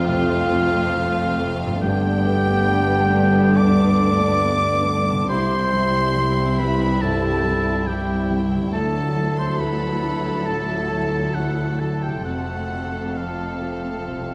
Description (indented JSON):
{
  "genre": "cinematic, emotional film score for orchestra",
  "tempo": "69 BPM",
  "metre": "4/4",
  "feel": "rubato",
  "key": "G major",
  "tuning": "A4 = 439 Hz",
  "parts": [
    { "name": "warm symphonic violin section", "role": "melody", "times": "0.0-14.3 s", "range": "D4 to A4", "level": "-34 LUFS", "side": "equal", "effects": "none" },
    { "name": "clear oboe", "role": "second line", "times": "0.0-14.3 s", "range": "F5 to D6", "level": "-28 LUFS", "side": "equal", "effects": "none" },
    { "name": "mellow clarinet", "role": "second line", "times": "0.0-14.3 s", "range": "F4 to D5", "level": "-31 LUFS", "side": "equal", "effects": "none" },
    { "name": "warm studio violin section", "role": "second line", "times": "0.0-14.3 s", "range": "F5 to D6", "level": "-37 LUFS", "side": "equal", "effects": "none" },
    { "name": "dark grand piano", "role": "accompaniment", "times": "0.0-14.3 s", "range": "C2 to A4", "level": "-31 LUFS", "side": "equal", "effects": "none" },
    { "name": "warm studio viola section", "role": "accompaniment", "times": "0.0-14.3 s", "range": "F#3 to E4", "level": "-33 LUFS", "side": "equal", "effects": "none" },
    { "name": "mellow French horn section", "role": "sustained chords", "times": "0.0-14.3 s", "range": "F#3 to E4", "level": "-31 LUFS", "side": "equal", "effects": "none" },
    { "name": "concert harp", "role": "arpeggios", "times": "0.0-14.3 s", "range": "F2 to A4", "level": "-35 LUFS", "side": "equal", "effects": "none" },
    { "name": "warm studio cello section", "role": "bass", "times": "0.0-14.3 s", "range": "C2 to G2", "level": "-27 LUFS", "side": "equal", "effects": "none" },
    { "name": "warm studio double bass section", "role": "bass", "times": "0.0-14.3 s", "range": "F1 to D2", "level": "-30 LUFS", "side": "equal", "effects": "none" }
  ],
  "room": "wet scoring stage reverb, RT60 1.6 s",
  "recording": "none",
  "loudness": "-21 LUFS",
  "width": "mono",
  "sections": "0.0-14.3 A section",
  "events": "none",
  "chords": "0.0 F; 1.8 Gadd9; 5.3 C; 8.7 Dadd9; 12.2 F"
}